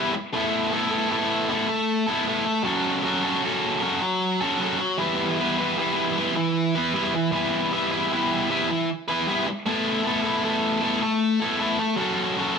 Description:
rock; 77 BPM; 3/4; straight; E dorian; A4 = 440 Hz
tight distorted guitar; solo; 0.0-12.6 s; E3 to B4; -21 LUFS; equal; distortion
moderate large studio reverb, RT60 1.0 s; band playing live in one room; -21 LUFS; side -6 dB against mid
0.0-12.6 A section
0.3 Asus2; 2.7 F#m; 5.0 Em; 9.7 Asus2; 12.0 F#m

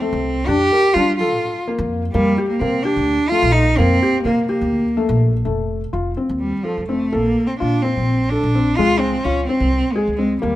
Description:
contemporary instrumental, chamber music in an uneven meter; 254 BPM (eighths); 7/8; straight; A4 = 439 Hz
rich cello; melody; 0.0-10.6 s; F3 to G4; -18 LUFS; right 1 dB
felt-muted upright piano; arpeggios; 0.0-10.6 s; Ab3 to Bb4; -21 LUFS; left 2 dB
upright bass; bass; 0.1-10.6 s; F1 to G3; -22 LUFS; equal
light reverb; close, detailed microphones; -16 LUFS; side -14 dB against mid
0.0-5.5 A section; 5.5-10.6 B section
0.5 Bbmaj7/F; 2.1 Bbmaj13; 5.5 F7; 7.1 Bbmaj9; 8.8 Dbmaj7(no3)

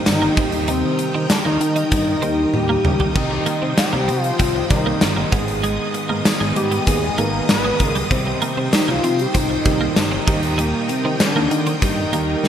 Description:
1980s-style pop; 97 BPM; 4/4; straight; Eb major; A4 = 437 Hz
fat analog lead; melody; 0.0-12.5 s; Bb3 to Cb5; -22 LUFS; left 2 dB; chorus, phaser, shimmer reverb, digital delay
soft electric-piano-like synth keys; accompaniment; 0.0-12.5 s; Eb3 to Bb4; -26 LUFS; right 4 dB; chorus, shimmer reverb
string machine, violins; sustained chords; 0.0-12.5 s; Eb3 to Eb6; -26 LUFS; equal; ensemble chorus, shimmer reverb
twelve-string electric guitar; riff; 0.1-12.2 s; G3 to Eb4; -28 LUFS; right 3 dB; ensemble chorus, shimmer reverb, digital delay
solid FM bass; bass; 0.1-12.5 s; G1 to Eb3; -24 LUFS; equal
gated 80s drum kit; drums; 0.1-12.5 s; crash cymbal, hi-hat, kick drum, snare drum, tambourine, toms; -20 LUFS; equal; gated reverb
crunchy overdriven guitar; accompaniment; 3.1-12.5 s; Ab2 to Eb4; -31 LUFS; left 2 dB; lush chorus, shimmer reverb
moderate lush hall reverb, RT60 3.0 s; bright 1980s-style digital production; -16 LUFS; side -9 dB against mid
0.0-12.5 A section
drum fill 2.5-3.2
0.4 Eb; 3.2 Cm; 5.3 Abm; 8.1 Cm; 10.3 Eb

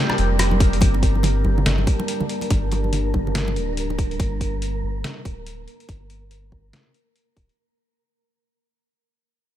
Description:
deep dubstep; 142 BPM; 4/4; swing 60% on 16ths, half-time; G minor; A4 = 441 Hz
deep dark ambient pad; sustained chords; 0.0-7.5 s; G3 to A5; -29 LUFS; equal; chorus, built-in reverb
wind-like tuned noise texture; texture; 0.0-7.6 s; Bb3 to Bb4; -31 LUFS; right 1 dB; built-in reverb
trip hop sampler-style drum kit; drums; 0.1-7.6 s; hi-hat, rim click, snare drum; -26 LUFS; left 1 dB
congas; percussion; 0.1-4.0 s; -28 LUFS; right 1 dB
soft dub sub bass; bass; 0.2-7.5 s; D1 to G1; -22 LUFS; equal; tube saturation
electronic kick drum; drums; 0.6-7.5 s; -20 LUFS; equal
little or no reverb; -19 LUFS; side -12 dB against mid
0.8-7.6 A section
fade-out 0.8-7.6
0.0 Gm; 0.8 Gmadd9

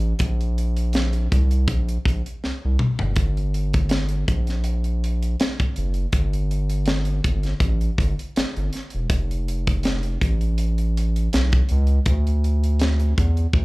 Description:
R&B, neo-soul; 81 BPM; 4/4; swing 54% on 16ths; G dorian; A4 = 440 Hz
round analog bass; bass; 0.0-13.6 s; E1 to E2; -21 LUFS; equal
tight funk drum kit; drums; 0.0-13.6 s; hi-hat, kick drum, snare drum, toms; -23 LUFS; equal
little or no reverb; live gig heard through the venue's PA, club reverb; -19 LUFS; side -22 dB against mid
0.0-13.6 A section
drum fill 2.4-3.2

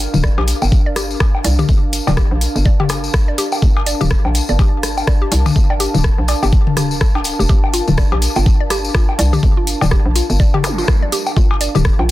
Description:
minimal techno; 124 BPM; 4/4; swing 59% on 16ths; G minor; A4 = 439 Hz
hollow knocking FM bass; bass; 0.0-12.1 s; D1 to C2; -18 LUFS; equal; sidechain pumping
airy breathy pad; texture; 0.0-12.1 s; D4 to A5; -25 LUFS; equal; chorus, sidechain pumping
electronic toms, cowbell and woodblock; percussion; 0.1-12.1 s; -21 LUFS; left 4 dB; digital delay
tambourine; percussion; 0.1-12.0 s; -27 LUFS; left 5 dB
mallet-like synth pluck; riff; 0.2-12.0 s; D4 to D5; -24 LUFS; equal; chorus, sidechain pumping, digital delay
electronic kick drum; drums; 0.2-12.0 s; -14 LUFS; equal
garage drum kit; drums; 0.2-12.1 s; hi-hat, rim click; -23 LUFS; equal; soft clipping on snare
zap; sound effects; 10.6-10.8 s; -27 LUFS; right 1 dB
little or no reverb; dense, heavily limited modern master; -12 LUFS; side -16 dB against mid
0.0-12.1 A section
0.0 Gm7

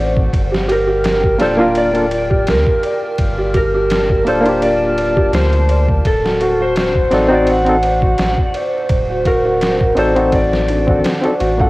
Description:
trip hop; 84 BPM; 4/4; swing 54% on 16ths; G minor; A4 = 438 Hz
barky reed electric piano; accompaniment; 0.0-11.7 s; Eb3 to C5; -17 LUFS; equal; tremolo, tape echo
warbly tape-like pad; sustained chords; 0.0-11.7 s; Bb4 to F6; -24 LUFS; right 1 dB; chorus, built-in reverb
felt-muted upright piano; arpeggios; 0.0-11.7 s; D4 to F#5; -20 LUFS; right 1 dB; tape echo
warm sub bass; bass; 0.0-11.7 s; D1 to D2; -20 LUFS; equal
trip hop sampler-style drum kit; drums; 0.2-11.7 s; kick drum, ride cymbal, snare drum; -20 LUFS; equal; cassette tape
electric slide guitar; melody; 0.7-11.0 s; A4 to F#5; -18 LUFS; left 1 dB; vintage 12-bit sampler grit, cassette tape, tape echo
little or no reverb; home recording on cassette, vinyl crackle; -12 LUFS; side -20 dB against mid
0.0-11.7 A section
0.3 Gm7; 6.0 D7b9

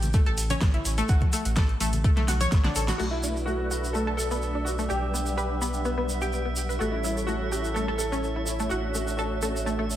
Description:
progressive house; 126 BPM; 4/4; straight; B minor; A4 = 440 Hz
round analog bass; bass; 0.0-10.0 s; A1 to B1; -30 LUFS; equal; tube saturation, sidechain pumping
deep house drum kit; drums; 0.0-3.1 s; crash cymbal, hi-hat, snare drum; -33 LUFS; equal
congas; percussion; 0.0-2.7 s; -36 LUFS; left 3 dB; sidechain pumping on perc
tube shaker; percussion; 0.0-10.0 s; -36 LUFS; right 2 dB
analog pluck; arpeggios; 0.1-9.9 s; A3 to C#5; -31 LUFS; equal; wide subtle chorus, sidechain pumping, analog delay
electronic kick drum; drums; 0.1-2.6 s; -22 LUFS; equal
warm concert grand piano; melody; 3.0-9.6 s; E4 to A4; -33 LUFS; equal; analog chorus, analog delay
filtered supersaw swell; sustained chords; 3.0-10.0 s; G3 to F#5; -33 LUFS; right 1 dB; phaser, sidechain pumping, low-pass filter
drifting glass-harmonics texture; texture; 3.4-10.0 s; E5; -38 LUFS; right 3 dB; chorus, built-in reverb, sidechain pumping
light reverb; -24 LUFS; side -12 dB against mid
0.0-3.0 A section; 3.0-10.0 B section
drum fill 2.3-3.0; band accent 2.9; filter sweep on supersaw synth 3.0-10.0
0.0 A; 1.1 D/A (rootless); 3.0 Bm7; 4.9 Gmaj7/B; 6.8 A7; 8.7 Dmaj7/A

